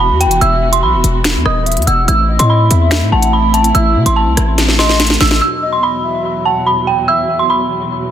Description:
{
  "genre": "hip hop, drill",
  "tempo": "144 BPM",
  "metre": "4/4",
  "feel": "half-time",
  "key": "unclear",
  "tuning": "A4 = 441 Hz",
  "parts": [
    { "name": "dark detuned synth bell", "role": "melody", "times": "0.0-8.1 s", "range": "G5 to E6", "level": "-14 LUFS", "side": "right 2 dB", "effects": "chorus, ping-pong delay" },
    { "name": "dark symphonic string section", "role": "sustained chords", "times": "0.0-8.1 s", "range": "E2 to F#4", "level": "-20 LUFS", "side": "right 3 dB", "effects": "none" },
    { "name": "hard-hitting 808-style bass", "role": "bass", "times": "0.0-5.4 s", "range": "D#1 to C3", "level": "-14 LUFS", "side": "left 1 dB", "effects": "none" },
    { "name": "drill drum kit", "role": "drums", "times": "0.2-5.4 s", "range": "finger snaps, hi-hat, rim click, snare drum", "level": "-16 LUFS", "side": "equal", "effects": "none" },
    { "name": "hollow clarinet-like synth lead", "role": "second line", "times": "0.4-7.5 s", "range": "D#5 to F#5", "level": "-22 LUFS", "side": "left 4 dB", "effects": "chorus, ping-pong delay" }
  ],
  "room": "little or no reverb",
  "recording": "dense, heavily limited modern master",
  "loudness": "-10 LUFS",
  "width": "side -10 dB against mid",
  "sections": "0.0-5.4 A section; 5.4-8.1 B section",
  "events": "drum fill 4.6-5.4",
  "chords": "0.0 Esus2; 2.1 Am; 5.4 Esus2"
}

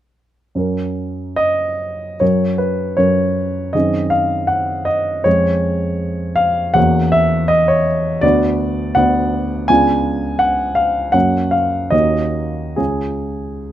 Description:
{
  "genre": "classical, romantic character piece for solo piano",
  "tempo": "59-84 BPM",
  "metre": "2/4",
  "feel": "rubato",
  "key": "F# major",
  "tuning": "A4 = 440 Hz",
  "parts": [
    { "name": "warm grand piano", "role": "solo", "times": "0.6-13.7 s", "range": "C#2 to G#5", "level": "-14 LUFS", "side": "equal", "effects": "none" }
  ],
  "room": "light reverb",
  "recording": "close, detailed microphones",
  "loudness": "-14 LUFS",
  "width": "side -12 dB against mid",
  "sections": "0.6-2.2 A section; 2.2-13.7 B section",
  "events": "none",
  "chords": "0.6 F#; 3.7 G#7/F#; 5.3 C#/E#; 6.8 F#7/E; 8.2 Bm/D; 9.7 C#7b9; 11.1 F#; 11.9 D#m7; 12.8 C#"
}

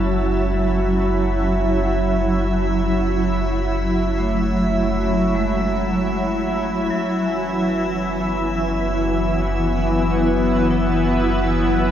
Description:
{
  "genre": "ambient",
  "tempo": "free time",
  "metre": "none",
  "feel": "none",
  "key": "F# minor",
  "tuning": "A4 = 440 Hz",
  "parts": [
    { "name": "shimmering ambient pad", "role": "sustained chords", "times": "0.0-11.9 s", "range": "E3 to A5", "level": "-20 LUFS", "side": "equal", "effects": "chorus, built-in reverb" },
    { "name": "vibraphone with hard mallets", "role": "arpeggios", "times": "0.0-11.9 s", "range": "F#3 to G#5", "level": "-26 LUFS", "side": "right 1 dB", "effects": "diffuse ambient delay" },
    { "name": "warm sub bass", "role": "bass", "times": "0.0-11.9 s", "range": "F#1", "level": "-24 LUFS", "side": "equal", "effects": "none" },
    { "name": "bowed-like drone", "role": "drone", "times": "0.1-11.9 s", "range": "F#3", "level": "-29 LUFS", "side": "right 1 dB", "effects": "none" },
    { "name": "drifting glass-harmonics texture", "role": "texture", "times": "0.0-11.9 s", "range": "E5 to E6", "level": "-33 LUFS", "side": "equal", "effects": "chorus, built-in reverb" }
  ],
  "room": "wet shimmer reverb, RT60 6.1 s",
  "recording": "dark, warm production",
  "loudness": "-17 LUFS",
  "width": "side -10 dB against mid",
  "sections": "0.0-11.9 A section",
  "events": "fade-in on synth texture 0.0-11.9; fade-out on vibraphone 0.0-11.9",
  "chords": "0.0 F#m7; 7.0 E/F#"
}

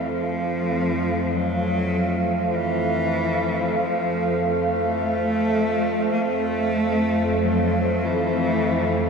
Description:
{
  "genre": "ambient",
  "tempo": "49 BPM",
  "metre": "4/4",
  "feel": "straight",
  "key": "F major",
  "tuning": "A4 = 437 Hz",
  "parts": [
    { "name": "rich cello", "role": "melody", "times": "0.0-9.1 s", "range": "E3 to Bb3", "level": "-25 LUFS", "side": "left 1 dB", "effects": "shimmer reverb, ping-pong delay" },
    { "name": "sweeping resonant pad", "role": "sustained chords", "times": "0.0-9.1 s", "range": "A4 to F5", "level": "-25 LUFS", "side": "right 1 dB", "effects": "chorus, shimmer reverb" },
    { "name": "dark detuned synth bell", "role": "arpeggios", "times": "0.0-9.1 s", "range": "C4 to A4", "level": "-39 LUFS", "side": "equal", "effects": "none" },
    { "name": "bowed-like drone", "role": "drone", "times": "0.0-9.1 s", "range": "F2 to A3", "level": "-24 LUFS", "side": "right 1 dB", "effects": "built-in reverb" }
  ],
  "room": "wet lush hall reverb, RT60 2.8 s",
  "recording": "dreamy mix soaked in reverb",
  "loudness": "-20 LUFS",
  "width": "side -5 dB against mid",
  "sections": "0.0-9.1 A section",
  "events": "none",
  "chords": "0.0 F"
}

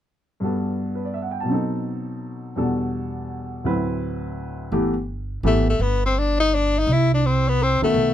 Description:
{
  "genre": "jazz",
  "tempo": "167 BPM",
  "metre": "3/4",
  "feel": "swing 64% on 8ths",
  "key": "G major",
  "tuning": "A4 = 440 Hz",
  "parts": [
    { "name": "warm baby grand piano", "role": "accompaniment", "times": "0.4-5.7, 7.8-8.1 s", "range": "D2 to A5", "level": "-23 LUFS", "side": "equal", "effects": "none" },
    { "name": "upright bass", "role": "bass", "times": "4.7-8.1 s", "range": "G1 to C2", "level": "-22 LUFS", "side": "right 2 dB", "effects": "none" },
    { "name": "clear tenor saxophone", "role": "melody", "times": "5.5-8.1 s", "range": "A3 to E4", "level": "-20 LUFS", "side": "left 4 dB", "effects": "none" }
  ],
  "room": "little or no reverb",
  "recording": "close, detailed microphones",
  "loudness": "-20 LUFS",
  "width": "side -11 dB against mid",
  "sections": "0.4-4.7 A section; 4.7-8.1 B section",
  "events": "none",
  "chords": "0.4 Gmaj9; 1.5 B7b9; 2.6 Em11; 3.6 D13; 4.7 G69; 5.8 G; 6.9 N.C."
}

